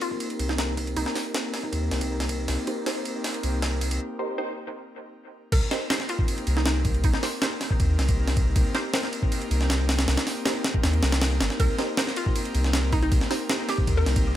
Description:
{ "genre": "drum and bass, jungle", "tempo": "158 BPM", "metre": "4/4", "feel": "straight", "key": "C minor", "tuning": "A4 = 441 Hz", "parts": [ { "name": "hollow square pluck", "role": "melody", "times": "0.0-1.1, 5.5-7.2, 11.6-14.2 s", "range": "Eb4 to Bb4", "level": "-33 LUFS", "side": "equal", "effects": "chorus, dub echo" }, { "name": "airy breathy pad", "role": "sustained chords", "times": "0.0-14.4 s", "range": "Bb3 to Bb4", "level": "-32 LUFS", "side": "left 1 dB", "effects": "chorus" }, { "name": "jungle sampler-style drum kit", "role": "drums", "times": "0.0-14.3 s", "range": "crash cymbal, hi-hat, kick drum, ride cymbal, snare drum", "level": "-26 LUFS", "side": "equal", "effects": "high-pass filter on kick, high-pass filter on cymbals, high-pass filter on snare, high-pass filter on hats, high-pass filter on room" }, { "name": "soft dub sub bass", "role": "bass", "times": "0.4-14.4 s", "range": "G1 to Eb2", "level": "-25 LUFS", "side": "equal", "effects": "none" }, { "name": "filtered dub chord stab", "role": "stabs", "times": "1.2-13.6 s", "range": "Eb4 to C5", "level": "-33 LUFS", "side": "right 2 dB", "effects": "phaser, vintage 12-bit sampler grit, dub echo" } ], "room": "light reverb, digital ambience", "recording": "none", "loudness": "-23 LUFS", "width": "side -12 dB against mid", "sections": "0.0-5.5 A section; 5.5-14.4 B section", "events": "build-up 0.0-5.5; filter sweep on analog synth pad 0.0-5.5; filter sweep on synth stab 0.0-5.5; drum fill 2.5-4.0; break 4.0-5.5; drop 5.5-14.4", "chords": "0.0 Cm7", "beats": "0.20 0.58 | 0.96 1.34 1.72 2.10 | 2.48 2.86 3.24 3.62 | 4.00 4.38 4.76 5.14 | 5.52 5.90 6.28 6.66 | 7.04 7.42 7.80 8.18 | 8.56 8.94 9.32 9.70 | 10.08 10.46 10.84 11.22 | 11.60 11.98 12.36 12.74 | 13.12 13.50 13.88 14.26" }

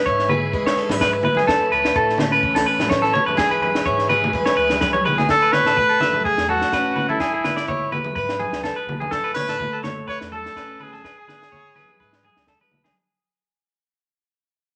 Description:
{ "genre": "highlife guitar band", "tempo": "126 BPM", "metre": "4/4", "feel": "swing 54% on 16ths", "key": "A major", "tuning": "A4 = 438 Hz", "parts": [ { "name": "picked plugged-in acoustic archtop guitar", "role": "accompaniment", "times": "0.0-12.9 s", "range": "A2 to B4", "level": "-28 LUFS", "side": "equal", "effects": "none" }, { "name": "bright tonewheel organ", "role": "sustained chords", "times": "0.0-5.3 s", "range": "C#5 to B5", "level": "-37 LUFS", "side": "equal", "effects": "none" }, { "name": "clean electric guitar", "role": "arpeggios", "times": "0.0-12.9 s", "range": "G#4 to E5", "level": "-23 LUFS", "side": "equal", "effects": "spring reverb" }, { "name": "round analog bass", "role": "bass", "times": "0.1-12.9 s", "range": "F#1 to A2", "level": "-37 LUFS", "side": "equal", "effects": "none" }, { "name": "compact cocktail drum kit", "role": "drums", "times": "0.1-12.9 s", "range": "kick drum, snare drum", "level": "-29 LUFS", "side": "equal", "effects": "none" }, { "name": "congas", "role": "percussion", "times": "0.3-12.9 s", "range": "none", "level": "-31 LUFS", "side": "equal", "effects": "none" }, { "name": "bright trumpet", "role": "melody", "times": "5.3-12.5 s", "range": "E4 to C#5", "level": "-22 LUFS", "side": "equal", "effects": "none" } ], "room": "wet studio reverb, RT60 0.6 s", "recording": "none", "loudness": "-20 LUFS", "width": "mono", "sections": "0.0-5.3 A section; 5.3-12.9 B section", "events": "drum fill 4.8-5.3, 12.7; fade-out 5.3-12.9", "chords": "0.0 E/G#; 1.5 Aadd9; 3.4 E/G#; 5.3 Aadd9; 7.2 E/G#; 9.1 Aadd9; 11.0 E/G#", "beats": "0.06 0.53 1.00 | 1.48 1.95 2.43 2.90 | 3.38 3.85 4.33 4.80 | 5.28 5.76 6.24 6.71 | 7.19 7.67 8.15 8.63 | 9.11 9.59 10.07 10.55 | 11.03 11.51 11.98 12.46" }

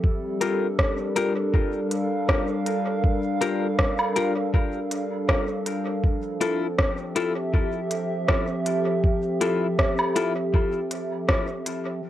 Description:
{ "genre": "ambient dub", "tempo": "80 BPM", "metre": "4/4", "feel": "swing 54% on 16ths", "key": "unclear", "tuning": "A4 = 440 Hz", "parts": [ { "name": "warbly tape-like pad", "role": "sustained chords", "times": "0.0-12.1 s", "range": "F3 to F5", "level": "-26 LUFS", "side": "equal", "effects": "chorus, built-in reverb" }, { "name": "electronic kick drum", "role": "drums", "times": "0.0-11.4 s", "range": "none", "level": "-23 LUFS", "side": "equal", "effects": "none" }, { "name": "semi-hollow electric guitar", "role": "stabs", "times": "0.4-10.3 s", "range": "E4 to Bb4", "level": "-28 LUFS", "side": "left 5 dB", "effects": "dub echo" }, { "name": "organic electronic drum kit", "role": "drums", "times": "0.4-11.8 s", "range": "hi-hat, rim click, woodblock", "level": "-26 LUFS", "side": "equal", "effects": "overdrive, dub echo" } ], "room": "light reverb", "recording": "home recording on cassette", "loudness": "-22 LUFS", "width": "side -12 dB against mid", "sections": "0.0-12.0 A section", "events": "band accent 11.3-11.7", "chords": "0.0 Gm7; 6.0 Fmaj7", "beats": "| 0.04 0.79 1.54 2.29 | 3.04 3.79 4.54 5.29 | 6.04 6.79 7.54 8.29 | 9.04 9.79 10.54 11.29 | 12.04" }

